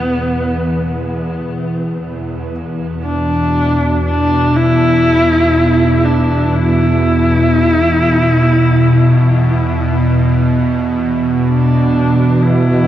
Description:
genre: dark ambient drone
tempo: free time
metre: none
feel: none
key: unclear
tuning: A4 = 440 Hz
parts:
  - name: clear horsehead fiddle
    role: melody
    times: 0.0-12.9 s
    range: B3 to E4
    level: -16 LUFS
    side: equal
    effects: ping-pong delay
  - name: sweeping resonant pad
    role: sustained chords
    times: 0.0-2.5, 10.5-12.9 s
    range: B2 to B4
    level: -19 LUFS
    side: equal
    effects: chorus
  - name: bowed-like drone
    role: drone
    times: 0.0-12.9 s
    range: E2 to E3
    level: -14 LUFS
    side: equal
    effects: built-in reverb
room: wet cathedral reverb, RT60 5.5 s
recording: worn, warbling old tape, cassette tape, warbly pitch drift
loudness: -11 LUFS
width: side -12 dB against mid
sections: 0.0-2.5 A section; 2.5-12.9 B section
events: none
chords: 0.0 E5

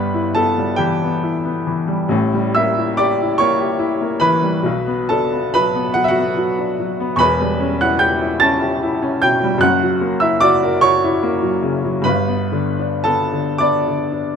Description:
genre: classical, romantic nocturne for solo piano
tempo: 48 BPM (dotted quarters)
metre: 6/8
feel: uneven beats, rubato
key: unclear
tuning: A4 = 440 Hz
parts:
  - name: clear upright piano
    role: solo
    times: 0.0-14.4 s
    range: E1 to A6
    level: -15 LUFS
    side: equal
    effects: none
room: light reverb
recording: close, detailed microphones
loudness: -15 LUFS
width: side -7 dB against mid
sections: 0.0-14.4 A section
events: none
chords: 0.0 Em/G; 2.1 A7b9; 4.7 Bm; 7.2 C#m7b5/E; 9.6 F#7; 12.1 G

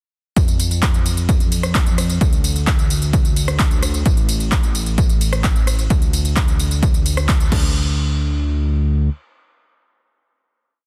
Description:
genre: EDM, festival progressive house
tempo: 130 BPM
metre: 4/4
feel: straight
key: D minor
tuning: A4 = 436 Hz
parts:
  - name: fat analog bass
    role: bass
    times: 0.4-9.1 s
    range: D2 to F2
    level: -22 LUFS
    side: equal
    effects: sidechain pumping
  - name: big-room dance drum kit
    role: drums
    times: 0.4-7.6 s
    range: crash cymbal, handclaps, hi-hat, ride cymbal, rim click, tambourine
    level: -26 LUFS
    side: equal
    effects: overdrive
  - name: electronic kick drum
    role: drums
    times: 0.4-7.6 s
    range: none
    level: -19 LUFS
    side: equal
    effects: overdrive
room: little or no reverb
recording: dense, heavily limited modern master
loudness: -17 LUFS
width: mono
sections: 0.4-7.7 drop; 7.7-10.9 final hit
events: drop 0.4-7.7; band accent 7.3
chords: none

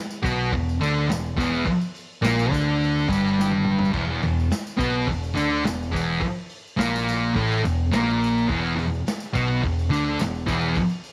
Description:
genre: garage rock duo or trio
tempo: 106 BPM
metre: 4/4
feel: straight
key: E minor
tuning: A4 = 440 Hz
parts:
  - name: vintage drum kit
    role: drums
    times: 0.1-11.1 s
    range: crash cymbal, hi-hat, kick drum, snare drum, toms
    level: -33 LUFS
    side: equal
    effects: none
  - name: tambourine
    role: percussion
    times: 0.1-11.1 s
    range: none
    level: -45 LUFS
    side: equal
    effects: none
  - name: thick fuzz guitar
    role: riff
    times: 0.2-10.8 s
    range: E2 to D4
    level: -24 LUFS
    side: equal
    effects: distortion
  - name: growling picked electric bass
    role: bass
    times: 0.2-10.8 s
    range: E1 to D2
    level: -31 LUFS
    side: equal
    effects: overdrive
room: light reverb, small room ambience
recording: none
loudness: -23 LUFS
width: mono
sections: 0.0-11.1 A section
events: drum fill 3.4-3.9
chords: 0.0 Em

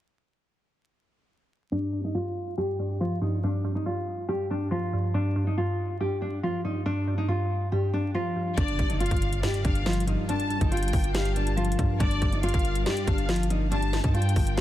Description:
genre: hip hop, trap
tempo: 140 BPM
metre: 4/4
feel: half-time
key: G minor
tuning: A4 = 441 Hz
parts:
  - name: nylon-string guitar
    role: melody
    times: 1.7-14.6 s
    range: D4 to G4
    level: -30 LUFS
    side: left 1 dB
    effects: low-pass filter, tape echo
  - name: glassy wavetable pluck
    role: accompaniment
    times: 1.7-14.6 s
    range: G2 to F3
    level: -30 LUFS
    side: right 1 dB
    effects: chorus, low-pass filter
  - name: warm studio violin section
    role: second line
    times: 8.6-14.6 s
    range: D5 to A5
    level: -34 LUFS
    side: left 1 dB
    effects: tape echo
  - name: ethereal airy pad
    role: sustained chords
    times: 9.4-14.6 s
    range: G3 to Bb4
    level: -37 LUFS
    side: left 2 dB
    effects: ensemble chorus, built-in reverb
  - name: long sustained 808-style bass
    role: bass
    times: 8.6-14.6 s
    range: G1 to G2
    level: -27 LUFS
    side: equal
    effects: none
  - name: trap drum kit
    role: drums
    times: 8.6-14.6 s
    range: hi-hat, kick drum, snare drum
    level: -28 LUFS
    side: equal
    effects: none
  - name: impact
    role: sound effects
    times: 8.7-10.3 s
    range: none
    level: -38 LUFS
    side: equal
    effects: none
room: digital ambience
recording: dense, heavily limited modern master, vinyl crackle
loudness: -24 LUFS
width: side -13 dB against mid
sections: 1.7-8.6 A section; 8.6-14.6 B section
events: filter sweep 1.7-8.6; impact 8.6-10.3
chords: 1.7 Ebmaj9/G (rootless); 8.6 Gm7

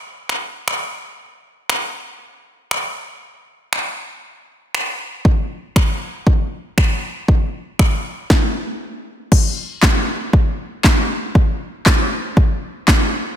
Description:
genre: pop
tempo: 118 BPM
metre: 4/4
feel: straight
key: none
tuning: none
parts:
  - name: deep house drum kit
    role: drums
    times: 0.3-13.0 s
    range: crash cymbal, finger snaps, handclaps, kick drum, snare drum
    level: -15 LUFS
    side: equal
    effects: overdrive
room: light reverb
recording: dense, heavily limited modern master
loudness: -16 LUFS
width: side -10 dB against mid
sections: 0.0-9.3 A section; 9.3-13.4 B section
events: none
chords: none

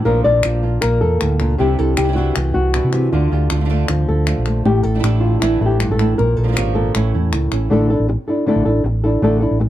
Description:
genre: flamenco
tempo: 157 BPM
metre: 4/4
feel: straight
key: unclear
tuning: A4 = 441 Hz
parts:
  - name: flamenco guitar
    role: melody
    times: 0.0-9.6 s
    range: G2 to D5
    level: -18 LUFS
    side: left 2 dB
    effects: none
  - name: flamenco guitar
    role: stabs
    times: 0.0-7.7 s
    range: C3 to F4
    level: -24 LUFS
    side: right 6 dB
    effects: none
  - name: hollow-body short-scale fingered electric bass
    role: bass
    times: 0.1-9.7 s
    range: G#1 to C3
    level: -18 LUFS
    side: right 1 dB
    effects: none
  - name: palmas hand claps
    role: percussion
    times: 0.4-7.7 s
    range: none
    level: -25 LUFS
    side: left 4 dB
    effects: none
room: light reverb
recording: dark, warm production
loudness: -14 LUFS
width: side -13 dB against mid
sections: 0.0-7.7 A section; 7.7-9.7 B section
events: none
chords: 0.1 Bb; 1.6 Cadd9; 3.1 Dm; 4.7 Asus4; 6.2 Bb; 6.9 A; 7.7 Asus4

